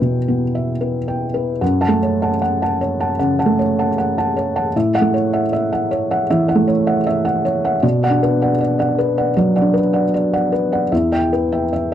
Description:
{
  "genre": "neoclassical minimalist piano",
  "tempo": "77 BPM",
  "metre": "4/4",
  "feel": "rubato",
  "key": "unclear",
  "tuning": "A4 = 440 Hz",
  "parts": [
    { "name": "felt-muted upright piano", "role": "solo", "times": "0.0-11.9 s", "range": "E2 to A5", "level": "-15 LUFS", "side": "equal", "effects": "none" }
  ],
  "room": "little or no reverb",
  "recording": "dry, close 1970s-style studio recording",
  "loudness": "-15 LUFS",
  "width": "side -10 dB against mid",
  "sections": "0.0-1.6 A section; 1.6-11.9 A section",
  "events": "none",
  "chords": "0.0 Em; 1.6 F#m; 4.7 A6; 7.8 Bm; 10.9 Em"
}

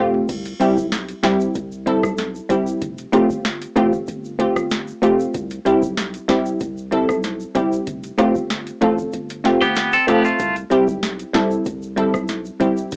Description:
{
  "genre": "dancehall",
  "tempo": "95 BPM",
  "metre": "4/4",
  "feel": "straight",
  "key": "C major",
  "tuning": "A4 = 439 Hz",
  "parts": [
    { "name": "glassy wavetable pluck", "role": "accompaniment", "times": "0.0-12.7 s", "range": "G3 to A4", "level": "-21 LUFS", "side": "equal", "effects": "chorus, sidechain pumping, cassette tape" },
    { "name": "warm 808-style bass", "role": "bass", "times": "0.0-13.0 s", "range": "F1 to C2", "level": "-33 LUFS", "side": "equal", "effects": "none" },
    { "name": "booming analog drum machine", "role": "drums", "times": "0.1-13.0 s", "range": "crash cymbal, hi-hat, kick drum, rim click, snare drum, toms", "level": "-29 LUFS", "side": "equal", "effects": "cassette tape" },
    { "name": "egg shaker and timbales", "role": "percussion", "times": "0.3-13.0 s", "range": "none", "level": "-32 LUFS", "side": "equal", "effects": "none" },
    { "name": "twangy electric guitar", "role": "arpeggios", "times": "9.6-10.6 s", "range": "A3 to A4", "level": "-19 LUFS", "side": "equal", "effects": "harmonic tremolo, cassette tape" }
  ],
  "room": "moderate booth ambience, RT60 0.3 s",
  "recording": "home recording on cassette, small speaker sound",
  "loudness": "-20 LUFS",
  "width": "mono",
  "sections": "0.3-13.0 A section",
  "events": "drum fill 0.0; kick muted 9.1-10.4",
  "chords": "0.3 C; 2.8 Fadd9; 5.3 C; 7.9 Fadd9; 10.4 C"
}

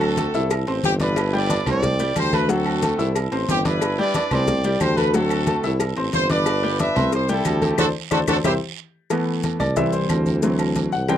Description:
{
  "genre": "latin, salsa",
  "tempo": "182 BPM",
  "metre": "4/4",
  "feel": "straight",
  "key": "unclear",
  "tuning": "A4 = 442 Hz",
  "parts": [
    { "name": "clear horn section", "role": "melody", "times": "0.0-8.5 s", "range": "C4 to E5", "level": "-23 LUFS", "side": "equal", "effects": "none" },
    { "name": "bright upright piano", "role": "accompaniment", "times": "0.0-11.2 s", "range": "E3 to E6", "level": "-24 LUFS", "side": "left 1 dB", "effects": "none" },
    { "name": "warm tuba", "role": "bass", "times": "0.0-11.2 s", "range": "G1 to D2", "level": "-23 LUFS", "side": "right 1 dB", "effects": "none" },
    { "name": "agogo bells and timbales", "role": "percussion", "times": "0.0-11.2 s", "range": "none", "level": "-32 LUFS", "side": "right 8 dB", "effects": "none" },
    { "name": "claves", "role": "percussion", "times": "0.0-11.2 s", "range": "none", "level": "-34 LUFS", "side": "left 20 dB", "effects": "none" },
    { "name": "congas", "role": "percussion", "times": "0.0-11.2 s", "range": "none", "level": "-27 LUFS", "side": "left 1 dB", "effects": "none" },
    { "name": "cowbell", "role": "percussion", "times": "0.2-11.2 s", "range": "none", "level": "-28 LUFS", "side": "left 6 dB", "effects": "none" },
    { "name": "guiro", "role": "percussion", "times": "0.2-11.2 s", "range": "none", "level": "-37 LUFS", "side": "right 23 dB", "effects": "none" },
    { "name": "maracas", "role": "percussion", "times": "0.2-11.2 s", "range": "none", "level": "-36 LUFS", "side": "left 18 dB", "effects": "none" }
  ],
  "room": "little or no reverb",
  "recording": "dry, close 1970s-style studio recording",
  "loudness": "-18 LUFS",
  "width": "side -10 dB against mid",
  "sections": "0.0-9.1 A section; 9.1-11.2 B section",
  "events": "drum fill 7.8-9.1; band accent 7.8-9.1; upright piano solo 9.1-11.2",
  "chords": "0.0 D7; 0.5 C; 1.2 G6; 1.8 C5; 2.5 D7; 3.2 C; 3.8 G6; 4.5 C5; 5.1 D7; 5.8 C; 6.5 G6; 7.1 C; 7.8 D7; 8.4 C; 9.1 Cmaj13; 9.8 C; 10.4 D7"
}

